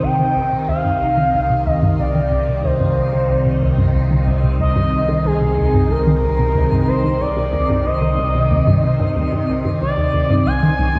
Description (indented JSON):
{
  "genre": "ambient, sequencer-driven space music",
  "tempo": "92 BPM",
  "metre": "4/4",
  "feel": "straight",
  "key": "C minor",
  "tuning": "A4 = 440 Hz",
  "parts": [
    { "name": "expressive portamento lead", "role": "melody", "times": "0.0-11.0 s", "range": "Ab4 to Ab5", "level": "-22 LUFS", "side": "equal", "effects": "chorus, shimmer reverb, tape echo" },
    { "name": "phased string machine", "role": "sustained chords", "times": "0.0-11.0 s", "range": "C3 to Eb4", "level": "-24 LUFS", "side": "equal", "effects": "ensemble chorus, phaser" },
    { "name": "resonant blip pluck", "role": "riff", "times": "0.0-11.0 s", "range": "C2 to Eb3", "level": "-22 LUFS", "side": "equal", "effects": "phaser, tape echo" },
    { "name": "fat analog bass", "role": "bass", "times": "0.0-11.0 s", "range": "C2", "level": "-24 LUFS", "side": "equal", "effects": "tube saturation" },
    { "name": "twinkling granular texture", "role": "texture", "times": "0.1-11.0 s", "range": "Eb4 to C5", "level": "-37 LUFS", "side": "equal", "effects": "built-in reverb, shimmer reverb" }
  ],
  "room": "wet echo chamber reverb, RT60 2.4 s",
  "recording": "echo-heavy mix",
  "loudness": "-17 LUFS",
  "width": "mono",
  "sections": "0.0-11.0 A section",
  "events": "fade-in on synth texture 0.0-11.0; filter sweep on synth arpeggio sound 0.0-11.0",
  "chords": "0.0 Cm",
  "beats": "0.03 0.68 1.33 | 1.99 2.64 3.29 3.94 | 4.60 5.25 5.90 6.55 | 7.20 7.86 8.51 9.16 | 9.81 10.46"
}